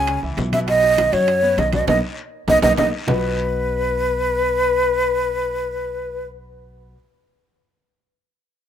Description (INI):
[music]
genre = Afro-Cuban jazz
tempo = 200 BPM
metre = 4/4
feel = straight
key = B major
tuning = A4 = 440 Hz
[part]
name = breathy mellow silver concert flute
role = melody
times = 0.0-6.2 s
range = B4 to G#5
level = -18 LUFS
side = equal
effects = plate reverb
[part]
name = clear concert grand piano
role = accompaniment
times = 0.0-6.9 s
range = B2 to F#5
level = -29 LUFS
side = right 1 dB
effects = plate reverb
[part]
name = upright bass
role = bass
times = 0.0-6.9 s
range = B1 to F#2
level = -26 LUFS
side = equal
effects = none
[part]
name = bongos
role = percussion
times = 0.1-3.2 s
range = none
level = -30 LUFS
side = left 7 dB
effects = none
[part]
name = congas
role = percussion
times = 0.1-3.2 s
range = none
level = -27 LUFS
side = left 3 dB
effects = none
[part]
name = guiro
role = percussion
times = 0.1-3.1 s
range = none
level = -37 LUFS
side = left 6 dB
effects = none
[part]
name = timbales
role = percussion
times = 0.1-3.1 s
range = none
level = -29 LUFS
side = right 9 dB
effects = none
[sound]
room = moderate small room reverb, RT60 0.5 s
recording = rough home demo mix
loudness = -17 LUFS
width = side -9 dB against mid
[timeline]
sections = 0.0-3.1 A section; 3.1-5.5 B section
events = band accent 1.9-3.1; drum fill 2.2-3.1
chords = 0.0 N.C.; 0.7 Bmaj7; 3.1 B